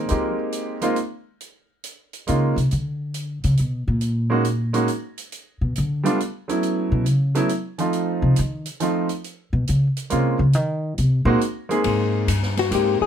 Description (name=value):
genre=jazz, small-group swing and bop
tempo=138 BPM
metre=3/4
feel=swing 67% on 8ths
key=unclear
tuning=A4 = 440 Hz
part: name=bright grand piano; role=accompaniment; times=0.0-13.0 s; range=F3 to Bb4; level=-22 LUFS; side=right 2 dB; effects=none
part: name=upright bass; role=bass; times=0.0-0.3, 2.3-13.0 s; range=G2 to F3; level=-20 LUFS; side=equal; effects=none
part: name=open jazz drum kit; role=drums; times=0.1-12.9 s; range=hi-hat, kick drum, ride cymbal, snare drum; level=-33 LUFS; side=right 1 dB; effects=none
part: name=hollow-body jazz guitar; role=melody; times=12.6-13.1 s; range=Gb4 to Ab4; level=-20 LUFS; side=left 10 dB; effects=none
room=little or no reverb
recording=none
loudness=-19 LUFS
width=side -9 dB against mid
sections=0.0-1.4 A section; 1.4-11.8 A section; 11.8-13.1 A section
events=upright bass solo 0.0-11.8; hollow-body jazz guitar solo 11.8-13.1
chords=0.0 Abmaj9; 1.4 Db69; 2.7 N.C.; 4.0 Gb69; 5.3 G9; 6.6 A69; 7.9 F7; 9.2 Bbm9; 10.5 Ab; 11.8 Abmaj9